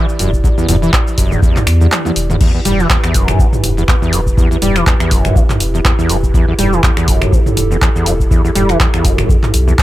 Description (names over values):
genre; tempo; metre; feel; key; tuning
acid house; 122 BPM; 4/4; swing 56% on 16ths; E minor; A4 = 440 Hz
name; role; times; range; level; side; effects
dark analog pad; sustained chords; 0.0-9.8 s; E4 to D5; -22 LUFS; right 1 dB; chorus, sidechain pumping
overdriven acid bass; riff; 0.0-9.8 s; E2 to G3; -17 LUFS; equal; ensemble chorus, sidechain pumping, digital delay
punchy analog drum machine; drums; 0.1-9.8 s; cabasa, crash cymbal, finger snaps, handclaps, hi-hat, toms; -17 LUFS; equal; none
saturated sub bass; bass; 0.2-9.7 s; E1 to E2; -16 LUFS; equal; sidechain pumping
electronic kick drum; drums; 0.3-9.8 s; none; -13 LUFS; equal; none
room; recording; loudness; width
digital ambience; none; -10 LUFS; side -15 dB against mid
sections
0.0-2.4 A section; 2.4-9.8 A section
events
drop 0.0-2.4, 2.4-9.8; break 1.9-2.4; drum fill 1.9-2.4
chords
0.0 Em